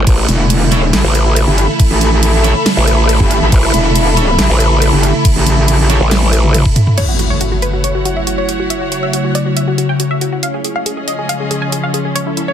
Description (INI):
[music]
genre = heavy wobble dubstep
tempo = 139 BPM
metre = 4/4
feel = half-time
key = F# minor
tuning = A4 = 444 Hz
[part]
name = evolving wavetable pad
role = sustained chords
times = 0.0-12.5 s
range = C#3 to E#4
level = -19 LUFS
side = right 1 dB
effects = phaser, built-in reverb, sidechain pumping
[part]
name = growl bass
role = bass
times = 0.0-6.6 s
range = A1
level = -11 LUFS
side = equal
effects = chorus, overdrive
[part]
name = warm symphonic string section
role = texture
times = 0.0-12.5 s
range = C#4 to B5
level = -20 LUFS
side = left 2 dB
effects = sidechain pumping
[part]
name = dubstep drum kit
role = drums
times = 0.1-12.5 s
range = crash cymbal, hi-hat, snare drum, toms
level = -17 LUFS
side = right 1 dB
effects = none
[part]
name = electronic kick drum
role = drums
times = 0.1-6.7 s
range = none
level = -11 LUFS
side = equal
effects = none
[part]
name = metallic wobble bass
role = bass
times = 0.3-6.0 s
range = E1 to A1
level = -12 LUFS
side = equal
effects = distortion, chorus, overdrive
[part]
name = sludgy distorted guitar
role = stabs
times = 0.7-6.0 s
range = E4 to C#5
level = -23 LUFS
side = right 2 dB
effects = overdrive, digital delay
[part]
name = wide unison pluck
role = melody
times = 7.0-12.5 s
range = E4 to G#5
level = -20 LUFS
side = left 1 dB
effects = digital delay
[part]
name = impact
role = sound effects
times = 7.0-8.7 s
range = none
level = -19 LUFS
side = equal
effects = none
[sound]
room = little or no reverb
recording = dense, heavily limited modern master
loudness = -10 LUFS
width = side -9 dB against mid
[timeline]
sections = 0.0-7.0 A section; 7.0-12.5 B section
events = drop 0.0-7.0; drum fill 6.1-7.0; impact 7.0-8.7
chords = 0.0 F#m7; 10.4 C#